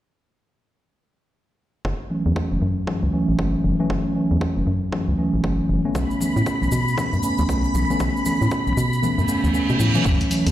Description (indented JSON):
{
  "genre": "deep house",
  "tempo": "117 BPM",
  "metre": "4/4",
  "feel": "swing 61% on 16ths",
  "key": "B minor",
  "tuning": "A4 = 440 Hz",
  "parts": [
    { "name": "organ-like FM bass", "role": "bass", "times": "1.8-10.5 s", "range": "F#1 to B2", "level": "-22 LUFS", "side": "equal", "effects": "sidechain pumping" },
    { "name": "electronic kick drum", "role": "drums", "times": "1.8-10.2 s", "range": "none", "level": "-26 LUFS", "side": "equal", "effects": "high-pass filter on kick" },
    { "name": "mellow tine electric piano", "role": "stabs", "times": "2.1-10.5 s", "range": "D3 to C#4", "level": "-22 LUFS", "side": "equal", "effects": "auto-pan, sidechain pumping, low-pass filter, ping-pong delay" },
    { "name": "cabasa", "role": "percussion", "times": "6.0-10.5 s", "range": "none", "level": "-37 LUFS", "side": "left 3 dB", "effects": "none" },
    { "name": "string machine, violins", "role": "texture", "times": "6.0-10.1 s", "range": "B5", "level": "-27 LUFS", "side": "equal", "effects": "ensemble chorus" },
    { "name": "congas", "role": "percussion", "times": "6.2-9.9 s", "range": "none", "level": "-32 LUFS", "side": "left 2 dB", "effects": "none" },
    { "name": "reverse cymbal", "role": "sound effects", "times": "9.3-10.1 s", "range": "none", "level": "-27 LUFS", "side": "right 4 dB", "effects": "none" },
    { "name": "ethereal airy pad", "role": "texture", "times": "10.4-10.5 s", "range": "F#4 to A5", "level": "-41 LUFS", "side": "left 4 dB", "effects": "none" },
    { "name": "electronic hi-hat", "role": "drums", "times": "10.2-10.5 s", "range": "none", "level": "-28 LUFS", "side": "left 1 dB", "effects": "low-pass filter on hats, low-pass filter on room" }
  ],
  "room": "light reverb",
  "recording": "played on a big sound system in a bare room, large studio reverb",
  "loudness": "-19 LUFS",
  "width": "side -13 dB against mid",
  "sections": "1.8-10.1 A section",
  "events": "filter sweep on FM bass 1.8-10.1; kick drops out 9.0-10.1; reverse cymbal 9.3-10.1",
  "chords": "1.8 F#m7; 6.0 Bm9"
}